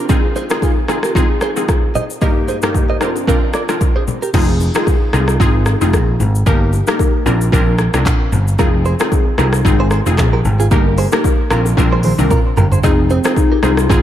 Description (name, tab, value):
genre	afrobeats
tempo	113 BPM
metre	4/4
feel	swing 55% on 16ths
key	F dorian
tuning	A4 = 438 Hz
part	glassy wavetable pluck	accompaniment	0.0-14.0 s	G2 to Bb4	-19 LUFS	left 1 dB	chorus
part	direct-recorded clean electric guitar	riff	0.0-4.3, 8.6-14.0 s	F4 to Eb5	-23 LUFS	right 4 dB	lush chorus, diffuse ambient delay
part	afro-pop drum kit	drums	0.1-14.0 s	crash cymbal, handclaps, hi-hat, kick drum, rim click, shaker, toms	-16 LUFS	equal	none
part	congas and bongos	percussion	0.1-14.0 s	none	-25 LUFS	left 6 dB	none
part	overdriven picked electric bass	bass	4.3-14.0 s	F1 to C2	-15 LUFS	equal	none
part	soft struck synth lead	melody	12.8-14.0 s	C4 to F4	-18 LUFS	left 3 dB	chorus, diffuse ambient delay
room	light reverb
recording	none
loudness	-12 LUFS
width	side -11 dB against mid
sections	0.0-4.3 A section; 4.3-12.8 B section; 12.8-14.0 C section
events	drum fill 11.8-12.8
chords	0.1 Fm7; 2.2 Eb/G; 3.0 Bbadd9; 4.3 Fm7; 6.5 Eb/G; 7.3 Bbadd9; 8.6 Fm7; 10.7 Eb/G; 11.5 Bbadd9; 12.8 Fm7